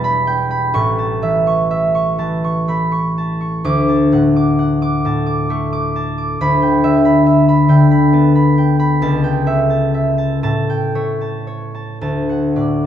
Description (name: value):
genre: classical, solo harp piece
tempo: 36-47 BPM (dotted quarters)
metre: 6/8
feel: rubato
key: D major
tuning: A4 = 440 Hz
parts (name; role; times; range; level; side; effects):
- concert harp; solo; 0.0-12.9 s; E1 to D6; -13 LUFS; equal; none
room: wet recital hall reverb, RT60 1.3 s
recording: none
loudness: -13 LUFS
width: side -10 dB against mid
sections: 0.0-12.9 A section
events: none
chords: 0.0 Em; 0.7 A; 3.6 D; 6.4 Em7/D; 9.0 A7/C#; 10.4 A7; 12.0 D